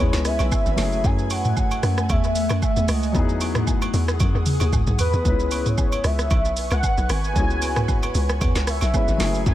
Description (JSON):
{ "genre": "amapiano", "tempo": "114 BPM", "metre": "4/4", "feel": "swing 55% on 16ths", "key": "C# minor", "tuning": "A4 = 440 Hz", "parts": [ { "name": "warm velvety synth lead", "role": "melody", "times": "0.0-9.5 s", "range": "B4 to G#5", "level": "-27 LUFS", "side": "equal", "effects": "chorus, dub echo" }, { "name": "warm grand piano", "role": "accompaniment", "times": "0.0-9.5 s", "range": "F#3 to C#5", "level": "-29 LUFS", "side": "left 5 dB", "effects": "dub echo" }, { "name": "ethereal airy pad", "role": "sustained chords", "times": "0.0-9.5 s", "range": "A3 to D#6", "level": "-30 LUFS", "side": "right 1 dB", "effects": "ensemble chorus, built-in reverb" }, { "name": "hollow log drum bass", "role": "bass", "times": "0.0-9.5 s", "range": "F#1 to F#2", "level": "-23 LUFS", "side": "equal", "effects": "none" }, { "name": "afro-pop drum kit", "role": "drums", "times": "0.1-9.5 s", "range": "hi-hat, kick drum, rim click, shaker, snare drum, toms", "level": "-23 LUFS", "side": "equal", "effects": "dub echo" }, { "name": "agogo bells and woodblock", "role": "percussion", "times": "0.4-9.3 s", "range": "none", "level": "-34 LUFS", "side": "right 5 dB", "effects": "none" } ], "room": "digital ambience", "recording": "echo-heavy mix", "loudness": "-19 LUFS", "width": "side -13 dB against mid", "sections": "0.0-9.5 A section", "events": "drum fill 4.2-5.3", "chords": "0.0 C#m7; 0.8 F#m9; 3.1 Emaj9; 5.3 C#m7", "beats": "0.52 | 1.04 1.57 2.09 2.62 | 3.15 3.67 4.20 4.73 | 5.25 5.78 6.30 6.83 | 7.36 7.88 8.41 8.94 | 9.46" }